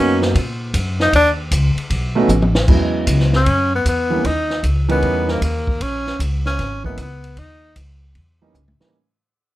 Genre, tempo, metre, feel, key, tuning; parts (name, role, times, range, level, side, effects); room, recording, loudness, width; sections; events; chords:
jazz, small-group swing and bop; 154 BPM; 4/4; swing 66% on 8ths; A4 = 440 Hz
clear tenor saxophone; melody; 0.0-7.8 s; A#3 to D#4; -18 LUFS; left 1 dB
warm grand piano; accompaniment; 0.0-8.9 s; E3 to A#4; -19 LUFS; right 3 dB
upright bass; bass; 0.0-8.8 s; G#1 to A#2; -19 LUFS; equal
compact cocktail drum kit; drums; 0.2-8.9 s; crash cymbal, hi-hat, kick drum, ride cymbal, snare drum, toms; -22 LUFS; equal
light reverb; -15 LUFS; side -16 dB against mid
0.0-2.7 A section; 2.7-8.9 B section
drum fill 2.3-2.7, 8.5-8.9; fade-out 2.7-8.9
0.0 G#m11 (rootless); 1.9 B7; 2.7 E69; 4.2 D#7b9; 5.8 A#m7b5; 7.4 D#7b9